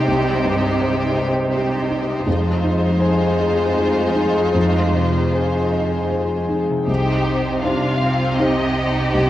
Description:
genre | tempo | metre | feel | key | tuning
cinematic, emotional film score for orchestra | 76-83 BPM | 3/4 | rubato | C minor | A4 = 439 Hz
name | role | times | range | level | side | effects
clear studio violin section | second line | 0.0-9.3 s | F4 to C5 | -25 LUFS | left 1 dB | none
felt-muted upright piano | accompaniment | 0.0-9.3 s | C2 to Eb5 | -22 LUFS | equal | none
rich studio viola section | accompaniment | 0.0-9.3 s | G3 to Eb4 | -24 LUFS | right 1 dB | none
concert harp | arpeggios | 0.0-9.3 s | C3 to G5 | -24 LUFS | left 4 dB | none
rich symphonic cello section | bass | 0.0-9.3 s | F2 to C3 | -23 LUFS | right 2 dB | none
rich symphonic violin section | melody | 6.9-9.3 s | C5 to F5 | -25 LUFS | left 3 dB | none
rich studio double bass section | bass | 6.9-9.3 s | C2 | -25 LUFS | right 2 dB | none
room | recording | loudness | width
moderate scoring stage reverb, RT60 1.9 s | worn, warbling old tape, cassette tape, warbly pitch drift | -16 LUFS | side -13 dB against mid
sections
0.0-6.9 A section; 6.9-9.3 A section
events
none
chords
0.0 Cm; 2.3 Fm7; 6.9 Cm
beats
| 0.07 0.80 1.53 | 2.26 3.01 3.77 | 4.55 5.34 6.12 | 6.89 7.64 8.39 | 9.15

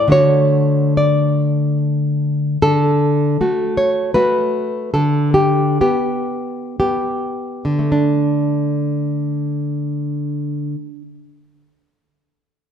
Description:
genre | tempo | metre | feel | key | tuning
romantic piece for solo classical guitar | 50-80 BPM | 3/4 | rubato | D major | A4 = 440 Hz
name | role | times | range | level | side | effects
nylon-string guitar | solo | 0.0-11.0 s | A2 to D5 | -15 LUFS | equal | none
room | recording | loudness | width
light reverb | dark, warm production | -15 LUFS | side -8 dB against mid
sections
0.0-2.6 A section; 2.6-7.9 B section; 7.9-12.7 C section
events
slowing down 1.4-7.9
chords
0.1 D; 4.9 G/D; 7.9 D5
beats
| 0.14 0.99 1.82 | 2.63 3.40 4.16 | 4.95 5.81 6.80 | 7.94 9.02 10.11

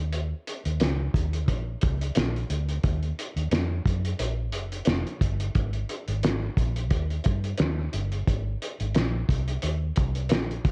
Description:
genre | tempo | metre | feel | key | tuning
indie pop, bedroom pop | 88 BPM | 4/4 | swing 55% on 16ths | Ab major | A4 = 436 Hz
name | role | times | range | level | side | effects
vintage muted fingered electric bass | bass | 0.0-10.7 s | F1 to G2 | -30 LUFS | equal | none
cloth-damped thuddy drum kit | drums | 0.1-10.7 s | hi-hat, kick drum, snare drum | -29 LUFS | equal | none
room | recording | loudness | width
light reverb | worn, warbling old tape, cassette tape, warbly pitch drift | -27 LUFS | mono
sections
0.0-10.7 A section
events
none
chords
none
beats
| 0.12 0.80 1.48 2.16 | 2.84 3.52 4.20 4.88 | 5.56 6.24 6.92 7.59 | 8.27 8.95 9.63 10.31

